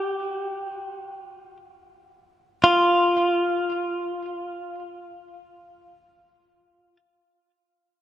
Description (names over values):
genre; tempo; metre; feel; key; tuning
pop; free time; none; none; unclear; A4 = 439 Hz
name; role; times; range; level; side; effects
direct-recorded clean electric guitar; melody; 0.0-7.0 s; F4 to G4; -21 LUFS; equal; tape echo
room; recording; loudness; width
moderate lush hall reverb, RT60 3.2 s; dark, warm production; -21 LUFS; side -12 dB against mid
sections
0.0-2.6 A section; 2.6-6.9 B section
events
slowing down 0.0-2.6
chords
none